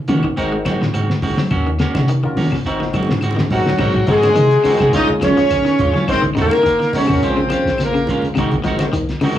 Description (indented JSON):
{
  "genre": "afrobeat",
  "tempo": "105 BPM",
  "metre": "4/4",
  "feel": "swing 54% on 16ths",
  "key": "unclear",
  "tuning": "A4 = 444 Hz",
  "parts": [
    { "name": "clean electric guitar", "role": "arpeggios", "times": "0.1-9.4 s", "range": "C3 to Ab3", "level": "-24 LUFS", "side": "left 4 dB", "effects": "cassette tape" },
    { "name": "clean electric guitar", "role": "stabs", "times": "0.1-9.4 s", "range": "Eb3 to Gb4", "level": "-22 LUFS", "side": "right 4 dB", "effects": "cassette tape" },
    { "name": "punchy sub bass", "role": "bass", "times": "0.1-9.2 s", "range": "Gb1 to Eb3", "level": "-21 LUFS", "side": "equal", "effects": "transformer saturation" },
    { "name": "cloth-damped thuddy drum kit", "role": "drums", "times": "0.1-9.4 s", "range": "crash cymbal, hi-hat, kick drum, snare drum", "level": "-24 LUFS", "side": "equal", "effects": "cassette tape" },
    { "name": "congas", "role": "percussion", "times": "0.1-9.4 s", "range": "none", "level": "-25 LUFS", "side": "equal", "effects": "none" },
    { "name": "claves", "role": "percussion", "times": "0.2-9.4 s", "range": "none", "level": "-32 LUFS", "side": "left 5 dB", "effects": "none" },
    { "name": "barky tine electric piano", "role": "accompaniment", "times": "0.4-9.4 s", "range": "Db3 to Eb5", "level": "-26 LUFS", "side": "left 3 dB", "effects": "lush chorus, cassette tape" },
    { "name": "warm horn section", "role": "melody", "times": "3.5-8.2 s", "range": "Gb3 to Eb5", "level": "-16 LUFS", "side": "left 1 dB", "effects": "cassette tape, tape echo" },
    { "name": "brilliant trombone", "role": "second line", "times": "3.5-8.2 s", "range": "Gb3 to Eb4", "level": "-24 LUFS", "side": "right 3 dB", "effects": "cassette tape" }
  ],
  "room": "wet booth ambience, RT60 0.2 s",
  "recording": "home recording on cassette, studio reverb",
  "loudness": "-14 LUFS",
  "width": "side -11 dB against mid",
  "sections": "0.0-3.8 A section; 3.8-9.4 B section",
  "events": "drum fill 2.9-3.8",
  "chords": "0.4 Ab7; 1.5 Ebm7; 2.7 Ab7; 4.9 Bbm7; 6.1 Ab7; 7.2 Bbm7; 8.4 Ab7",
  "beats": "0.37 0.94 | 1.51 2.09 2.66 3.23 | 3.80 4.37 4.94 5.51 | 6.08 6.65 7.22 7.79 | 8.36 8.93"
}